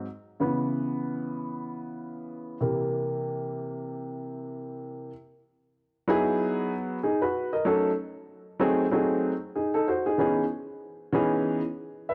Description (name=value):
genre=hip hop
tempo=95 BPM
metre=4/4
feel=swing 58% on 16ths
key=unclear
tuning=A4 = 440 Hz
part: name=dark upright piano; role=solo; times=0.0-12.1 s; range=C3 to E5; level=-28 LUFS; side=equal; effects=none
room=moderate echo chamber reverb, RT60 2.0 s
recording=worn, warbling old tape, cassette tape, warbly pitch drift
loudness=-28 LUFS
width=mono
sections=0.0-5.1 A section; 5.1-12.1 B section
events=upright piano solo 0.0-5.1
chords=0.1 C#m7; 2.6 C7; 5.1 Emaj9; 7.7 D#m7b5; 8.9 G#7b9; 10.2 C#m9